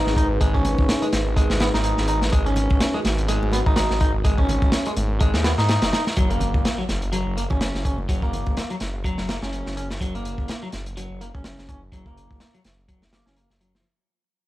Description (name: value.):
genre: breakbeat, breaks.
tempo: 125 BPM.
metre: 4/4.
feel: swing 56% on 16ths.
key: unclear.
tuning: A4 = 441 Hz.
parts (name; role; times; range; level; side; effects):
dark analog pad; sustained chords; 0.0-6.1 s; D#4 to B4; -30 LUFS; equal; chorus, phaser, sidechain pumping.
clean electric guitar; riff; 0.0-13.8 s; E#3 to D#4; -27 LUFS; equal; tube saturation, low-pass filter, analog delay.
detuned saw bass; bass; 0.1-13.8 s; F#1 to G#2; -25 LUFS; equal; none.
crunchy breakbeat drum kit; drums; 0.1-13.8 s; hi-hat, kick drum, snare drum; -23 LUFS; equal; none.
congas; percussion; 0.6-10.0 s; none; -34 LUFS; right 2 dB; none.
impact; sound effects; 6.2-8.1 s; none; -31 LUFS; equal; none.
room: small room reverb.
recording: dry, gritty hardware recording, vinyl crackle.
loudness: -19 LUFS.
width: side -16 dB against mid.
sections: 0.0-6.2 A section; 6.2-13.8 B section.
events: drop 0.0-6.2; fade-out 6.2-13.8; impact 6.2-8.1; filter sweep on detuned saw bass 6.2-13.8.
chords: 0.0 G#madd9; 6.2 F#.